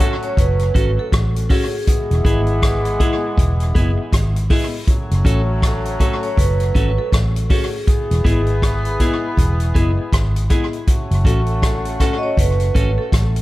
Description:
roots reggae; 80 BPM; 4/4; swing 60% on 16ths; F# minor; A4 = 440 Hz
vibraphone with hard mallets; melody; 0.0-13.4 s; G#4 to D#5; -25 LUFS; right 1 dB; dub echo
dark horn section; second line; 0.0-13.4 s; E3 to B4; -27 LUFS; equal; dub echo
clean electric guitar; accompaniment; 0.0-13.0 s; B3 to A4; -27 LUFS; right 1 dB; dub echo
dark upright piano; stabs; 0.0-13.0 s; G#3 to F#4; -29 LUFS; left 6 dB
vintage drum kit; drums; 0.0-13.4 s; hi-hat, kick drum, rim click; -18 LUFS; equal
vintage muted fingered electric bass; bass; 0.4-13.4 s; E1 to A1; -18 LUFS; equal
light reverb; -15 LUFS; side -17 dB against mid
0.0-13.4 A section
0.0 F#m; 1.9 E; 4.9 F#m; 7.9 E; 10.9 F#m
0.37 1.12 | 1.87 2.62 3.37 4.12 | 4.88 5.62 6.38 7.12 | 7.88 8.63 9.38 10.12 | 10.88 11.62 12.38 13.12

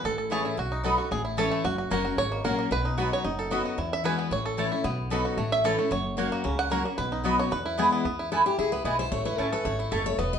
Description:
bluegrass; 225 BPM; 4/4; straight; E major; A4 = 442 Hz
bluegrass banjo; melody; 0.0-10.4 s; A3 to F#5; -29 LUFS; right 2 dB
picked steel-string acoustic guitar; accompaniment; 0.0-10.4 s; E2 to D#5; -30 LUFS; left 5 dB
upright bass; bass; 0.0-10.4 s; E1 to E2; -34 LUFS; right 1 dB
mandolin; stabs; 0.3-10.0 s; A3 to B5; -28 LUFS; right 2 dB
wet studio reverb, RT60 0.7 s; heard from further back in the room, nothing above 10.9 kHz; -24 LUFS; side -7 dB against mid
0.0-8.1 A section; 8.1-10.4 A section
five-string banjo solo 0.0-8.1; steel-string acoustic guitar solo 8.1-10.4
0.0 A; 0.6 B; 1.1 A; 1.6 F#; 2.7 B; 3.8 Eadd9; 4.3 A; 4.8 B; 5.4 A; 5.9 F#; 7.0 B; 7.5 E; 9.1 A
0.04 0.31 | 0.58 0.84 1.11 1.38 | 1.65 1.91 2.18 2.45 | 2.71 2.98 3.25 3.51 | 3.78 4.05 4.32 4.58 | 4.85 5.12 5.38 5.65 | 5.92 6.18 6.45 6.72 | 6.98 7.25 7.52 7.78 | 8.05 8.32 8.59 8.85 | 9.12 9.39 9.65 9.92 | 10.19

